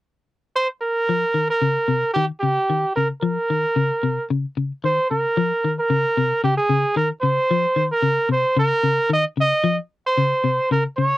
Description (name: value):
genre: afrobeat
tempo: 112 BPM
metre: 4/4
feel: swing 55% on 16ths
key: Eb mixolydian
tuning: A4 = 437 Hz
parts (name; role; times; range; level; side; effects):
- warm trumpet; melody; 0.6-11.2 s; G4 to Eb5; -19 LUFS; right 2 dB; none
- clean electric guitar; arpeggios; 1.1-11.1 s; C3 to F3; -22 LUFS; left 4 dB; tremolo
room: moderate booth ambience, RT60 0.2 s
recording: dry, close 1970s-style studio recording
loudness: -18 LUFS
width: side -16 dB against mid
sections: 0.0-1.1 A section; 1.1-11.2 B section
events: none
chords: 0.0 N.C.; 1.1 Eb7(no3)